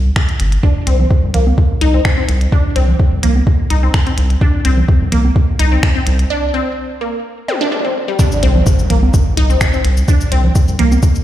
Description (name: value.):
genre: minimal techno.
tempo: 127 BPM.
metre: 4/4.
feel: swing 53% on 16ths.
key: C minor.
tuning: A4 = 439 Hz.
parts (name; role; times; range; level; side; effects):
round analog bass; bass; 0.0-11.0 s; G1 to C2; -12 LUFS; equal; sidechain pumping.
electronic kick drum; drums; 0.2-11.1 s; none; -12 LUFS; equal; small room ambience.
minimal click drum kit; drums; 0.2-11.2 s; cabasa, finger snaps, hi-hat; -24 LUFS; left 1 dB; small room ambience.
resonant blip pluck; riff; 0.6-10.9 s; G3 to Eb4; -19 LUFS; left 1 dB; phaser, sidechain pumping, tape echo.
congas; percussion; 1.0-5.3, 8.6-11.0 s; none; -23 LUFS; right 1 dB; small room ambience, tape echo.
zap and impact; sound effects; 7.5-10.1 s; none; -20 LUFS; equal; none.
room: light reverb, digital ambience.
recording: played on a big sound system in a bare room, large studio reverb.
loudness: -11 LUFS.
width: side -13 dB against mid.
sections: 0.0-8.2 A section; 8.2-11.2 B section.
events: break 6.3-8.2; drop 8.2-11.2; impact 8.2-10.1.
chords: none.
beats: 0.16 | 0.63 1.11 1.58 2.05 | 2.52 3.00 3.47 3.94 | 4.41 4.88 5.36 5.83 | 6.30 6.78 7.25 7.72 | 8.19 8.66 9.14 9.61 | 10.08 10.55 11.03.